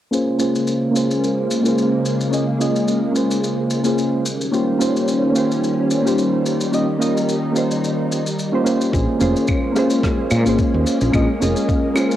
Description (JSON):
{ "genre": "sunset chillout", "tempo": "109 BPM", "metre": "4/4", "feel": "swing 55% on 16ths", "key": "Bb dorian", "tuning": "A4 = 436 Hz", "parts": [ { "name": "soft electric-piano-like synth keys", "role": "accompaniment", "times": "0.1-12.2 s", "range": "Bb3 to Eb5", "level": "-19 LUFS", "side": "equal", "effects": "chorus, auto-pan, low-pass filter, cassette tape, analog delay" }, { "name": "soft string machine", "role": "sustained chords", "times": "0.1-12.2 s", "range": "Db3 to Eb4", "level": "-21 LUFS", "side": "equal", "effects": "ensemble chorus, cassette tape" }, { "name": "shaker, claves and rim click", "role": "drums", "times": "0.1-12.2 s", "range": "none", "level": "-29 LUFS", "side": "left 1 dB", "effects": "cassette tape" }, { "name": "woody fretless electric bass", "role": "bass", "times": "8.9-11.5 s", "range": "F1 to Bb2", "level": "-19 LUFS", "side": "equal", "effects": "none" }, { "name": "electronic kick drum", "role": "drums", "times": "8.9-11.8 s", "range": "none", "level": "-21 LUFS", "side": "equal", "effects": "cassette tape" }, { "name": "bongos", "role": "percussion", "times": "9.8-12.1 s", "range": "none", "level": "-25 LUFS", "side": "left 2 dB", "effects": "none" } ], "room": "light reverb, small room ambience", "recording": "home recording on cassette", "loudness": "-16 LUFS", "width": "side -12 dB against mid", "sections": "0.1-12.2 A section", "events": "filter sweep on synth keys 0.1-12.2", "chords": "0.1 Bbm7; 4.3 Eb13; 8.9 Bbm7" }